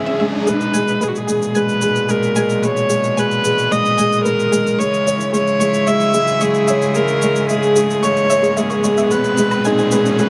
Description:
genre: piano and strings electronica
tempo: 111 BPM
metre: 4/4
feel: straight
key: G# minor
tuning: A4 = 440 Hz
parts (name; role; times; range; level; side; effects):
- warm viola; melody; 0.0-10.3 s; F#4 to E5; -20 LUFS; equal; low-pass filter
- rich string quartet; sustained chords; 0.0-10.3 s; A#2 to E4; -26 LUFS; equal; low-pass filter
- felt-muted upright piano; riff; 0.0-10.3 s; G#3 to E5; -20 LUFS; equal; none
- riser; sound effects; 0.0-10.3 s; none; -29 LUFS; equal; none
- analog pluck; arpeggios; 0.1-10.2 s; G#4 to C#6; -28 LUFS; equal; chorus, tape echo
- shaker and woodblock; drums; 0.5-10.3 s; none; -31 LUFS; equal; none
room: moderate huge ambient reverb, RT60 5.0 s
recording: none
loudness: -16 LUFS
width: mono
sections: 0.5-10.3 A section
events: riser 0.0-0.5; build-up 0.5-10.3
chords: 0.5 G#madd9; 4.8 C#m; 9.1 G#madd9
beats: | 0.47 1.01 1.55 2.09 | 2.63 3.17 3.71 4.25 | 4.80 5.34 5.88 6.42 | 6.96 7.50 8.04 8.58 | 9.12 9.66 10.20

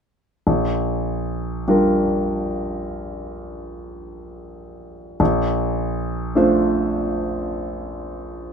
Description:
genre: classical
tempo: 48-53 BPM (dotted quarters)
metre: 12/8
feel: rubato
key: Bb major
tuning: A4 = 439 Hz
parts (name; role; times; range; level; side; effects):
- warm grand piano; accompaniment; 0.5-8.5 s; Bb1 to C5; -20 LUFS; equal; none
room: light reverb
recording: minimal, uncompressed stereo recording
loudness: -19 LUFS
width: side -6 dB against mid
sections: 0.5-8.5 A section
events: none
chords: 0.5 Bb6; 5.2 Dm7/Bb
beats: | 0.47 1.68 2.89 4.04 | 5.20 6.36 7.52

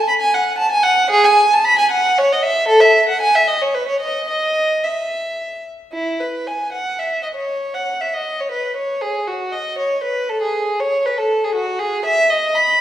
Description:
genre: classical, baroque-style suite movement for unaccompanied violin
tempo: 117 BPM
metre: 3/4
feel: rubato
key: E major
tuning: A4 = 440 Hz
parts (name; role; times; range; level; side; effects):
- rich violin; solo; 0.0-12.8 s; E4 to B5; -15 LUFS; equal; none
room: wet recital hall reverb, RT60 1.6 s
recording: heard from further back in the room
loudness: -15 LUFS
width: side -12 dB against mid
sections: 0.0-5.9 A section; 5.9-12.8 A section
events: none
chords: none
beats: 0.09 0.59 | 1.12 1.66 2.17 | 2.69 3.21 3.74 | 4.28 4.83 5.38 | 5.93 6.46 6.97 | 7.48 8.00 8.51 | 9.01 9.52 10.03 | 10.53 11.03 11.53 | 12.03 12.54

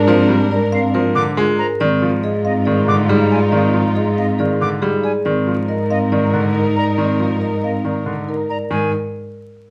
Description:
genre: classical, minimalist pattern music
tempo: 139 BPM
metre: 4/4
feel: straight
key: unclear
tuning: A4 = 440 Hz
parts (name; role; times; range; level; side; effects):
- marimba with medium mallets; melody; 0.0-8.9 s; Ab4 to F5; -26 LUFS; equal; none
- mellow clarinet; second line; 0.0-8.5 s; D4 to Eb4; -28 LUFS; equal; none
- dark studio string section; sustained chords; 0.0-8.5 s; D4 to Bb4; -28 LUFS; equal; none
- vibraphone with medium mallets; arpeggios; 0.0-8.9 s; C4 to Bb4; -24 LUFS; equal; none
- rich cello; bass; 0.0-8.9 s; Ab2; -22 LUFS; equal; none
- bright baby grand piano; accompaniment; 0.1-8.9 s; D3 to Ab3; -24 LUFS; equal; none
- bright concert flute; arpeggios; 0.7-8.9 s; Eb5 to D6; -26 LUFS; equal; none
room: moderate large studio reverb, RT60 0.8 s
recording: vinyl crackle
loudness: -17 LUFS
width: mono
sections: 0.0-8.7 A section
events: none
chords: 0.0 Bb9/Ab; 1.8 Fm9/Ab; 5.3 Cm9/Ab; 8.7 Ab5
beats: | 0.07 0.51 0.94 1.37 | 1.80 2.23 2.66 3.10 | 3.53 3.96 4.39 4.82 | 5.25 5.68 6.12 6.55 | 6.98 7.41 7.84 8.28 | 8.71

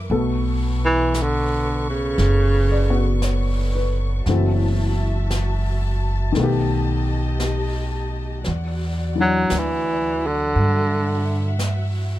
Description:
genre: jazz ballad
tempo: 57 BPM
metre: 4/4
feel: swing 68% on 8ths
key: unclear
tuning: A4 = 442 Hz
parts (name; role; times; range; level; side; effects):
- warm baby grand piano; accompaniment; 0.0-12.2 s; B2 to D5; -26 LUFS; left 4 dB; none
- warm studio string section; sustained chords; 0.0-12.2 s; F#3 to C#6; -32 LUFS; left 2 dB; none
- upright bass; bass; 0.0-12.2 s; F#1 to G2; -21 LUFS; equal; none
- jazz brush drum kit; drums; 0.1-12.2 s; brushed snare drum, hi-hat, snare drum; -34 LUFS; equal; none
- warm baritone saxophone; melody; 0.9-11.6 s; C#3 to F#3; -21 LUFS; right 1 dB; none
room: little or no reverb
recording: none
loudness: -18 LUFS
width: side -15 dB against mid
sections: 0.0-12.2 A section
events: baritone saxophone solo 0.0-12.2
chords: 0.1 Bsus2; 4.3 F#m7b5; 6.4 Baug7; 8.5 Em9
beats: | 0.11 1.15 2.18 3.22 | 4.26 5.31 6.35 7.40 | 8.45 9.50 10.54 11.59

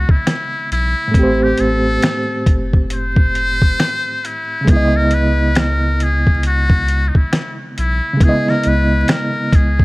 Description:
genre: lo-fi hip hop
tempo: 68 BPM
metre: 4/4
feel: swing 60% on 16ths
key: unclear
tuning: A4 = 436 Hz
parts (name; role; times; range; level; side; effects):
- trumpet with metal mute; melody; 0.0-9.8 s; D#4 to C5; -20 LUFS; left 1 dB; none
- bright reed electric piano; accompaniment; 0.0-9.8 s; A2 to D#5; -19 LUFS; right 1 dB; overdrive, fast tremolo
- soft dub sub bass; bass; 0.0-9.8 s; F#1 to C#2; -18 LUFS; equal; none
- dusty soul sampler-style drum kit; drums; 0.1-9.8 s; finger snaps, hi-hat, kick drum, snare drum; -15 LUFS; equal; none
room: little or no reverb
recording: vinyl crackle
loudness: -13 LUFS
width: side -22 dB against mid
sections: 0.0-9.8 A section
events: none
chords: 0.0 C#m9; 1.1 Am7; 4.7 C#m9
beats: 0.27 | 1.15 2.03 2.91 3.79 | 4.68 5.56 6.44 7.32 | 8.21 9.09

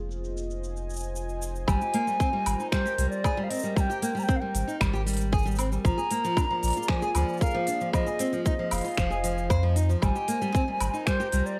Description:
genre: folktronica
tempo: 115 BPM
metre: 4/4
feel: straight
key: Ab lydian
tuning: A4 = 440 Hz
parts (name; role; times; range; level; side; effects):
- warm analog pad; sustained chords; 0.0-11.6 s; Bb3 to Bb5; -40 LUFS; equal; chorus, vintage 12-bit sampler grit
- warm sub bass; bass; 0.0-11.4 s; F1 to F2; -30 LUFS; equal; none
- organic electronic drum kit; drums; 0.1-11.6 s; finger snaps, hi-hat, shaker, woodblock; -37 LUFS; equal; overdrive
- hollow wooden flute; melody; 1.7-11.6 s; C5 to Bb5; -32 LUFS; equal; none
- nylon-string guitar; arpeggios; 1.7-11.6 s; F3 to C5; -33 LUFS; equal; none
- electronic kick drum; drums; 1.7-11.2 s; none; -29 LUFS; equal; overdrive
room: light reverb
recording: vinyl crackle, low-pass filter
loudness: -27 LUFS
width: mono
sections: 0.0-1.7 A section; 1.7-11.6 B section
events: filter sweep on analog synth pad 0.0-1.7; filter sweep 0.0-1.7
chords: 0.0 Fm7; 1.7 Abmaj9; 5.8 Bb7; 7.9 Fm7; 10.0 Abmaj9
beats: 0.11 0.63 1.15 | 1.68 2.20 2.72 3.24 | 3.76 4.28 4.81 5.33 | 5.85 6.37 6.89 7.42 | 7.94 8.46 8.98 9.50 | 10.02 10.54 11.07 11.59

